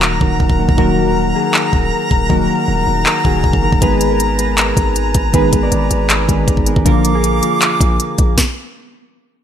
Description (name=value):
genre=hip hop, trap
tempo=158 BPM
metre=4/4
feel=half-time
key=Eb harmonic minor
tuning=A4 = 438 Hz
part: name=soft electric-piano-like synth keys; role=accompaniment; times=0.0-8.4 s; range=D3 to D5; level=-16 LUFS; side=equal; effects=chorus, low-pass filter
part: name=mellow woodwind section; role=sustained chords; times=0.0-8.4 s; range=Bb4 to D6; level=-20 LUFS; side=left 2 dB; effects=stereo widening
part: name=hard-hitting 808-style bass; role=bass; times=0.0-8.4 s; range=Eb1 to Bb1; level=-18 LUFS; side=equal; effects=none
part: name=trap drum kit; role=drums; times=0.0-8.5 s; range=handclaps, hi-hat, kick drum, snare drum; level=-15 LUFS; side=equal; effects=none
room=light reverb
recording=lossy compression artefacts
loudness=-12 LUFS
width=side -9 dB against mid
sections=0.0-9.4 A section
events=break 0.0-3.8; stop 8.4-9.4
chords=0.0 Ebm; 3.8 Abm; 6.9 Bb